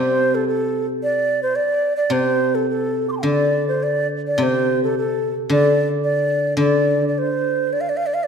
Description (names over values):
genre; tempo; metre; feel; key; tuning
chinese traditional, Chinese chamber ensemble; 107 BPM; 2/4; rubato; D yu mode; A4 = 435 Hz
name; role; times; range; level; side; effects
xiao; melody; 0.0-8.3 s; A4 to D6; -19 LUFS; right 1 dB; none
guzheng; accompaniment; 0.0-8.3 s; C3 to D3; -21 LUFS; left 1 dB; none
room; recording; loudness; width
moderate scoring stage reverb, RT60 1.6 s; dark, warm production; -17 LUFS; side -6 dB against mid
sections
0.0-7.7 A section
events
none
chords
none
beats
0.49 | 1.03 1.57 | 2.12 2.69 | 3.25 3.83 | 4.39 4.95 | 5.50 6.04 | 6.58 7.14 | 7.72